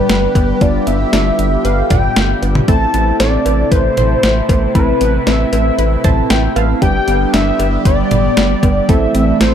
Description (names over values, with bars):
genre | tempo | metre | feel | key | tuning
synth-pop | 116 BPM | 4/4 | straight | A minor | A4 = 438 Hz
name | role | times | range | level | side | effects
wide unison lead | melody | 0.0-9.5 s | B4 to A5 | -18 LUFS | left 1 dB | dub echo, shimmer reverb
warm analog keys | accompaniment | 0.0-9.5 s | B3 to A5 | -20 LUFS | right 2 dB | chorus, dub echo, shimmer reverb
phased analog pad | sustained chords | 0.0-9.5 s | C3 to G4 | -20 LUFS | equal | phaser, chorus, shimmer reverb
rubbery square bass | bass | 0.1-9.5 s | G1 to A1 | -17 LUFS | equal | none
clean 12-bit digital drum machine | drums | 0.1-9.5 s | cowbell, hi-hat, kick drum, snare drum, toms | -16 LUFS | equal | overdrive
wide unison pluck | arpeggios | 0.4-9.5 s | G3 to D5 | -24 LUFS | left 2 dB | auto-pan, dub echo, shimmer reverb
room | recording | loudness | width
moderate spring reverb, RT60 1.3 s, digital ambience | echo-heavy mix | -11 LUFS | side -9 dB against mid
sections
0.0-9.5 A section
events
synth keys fill 5.8-6.8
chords
0.0 G; 2.7 Amadd9; 6.8 G; 8.9 Am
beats
0.10 | 0.61 1.13 1.65 2.16 | 2.68 3.20 3.72 4.23 | 4.75 5.27 5.79 6.30 | 6.82 7.34 7.85 8.37 | 8.89 9.41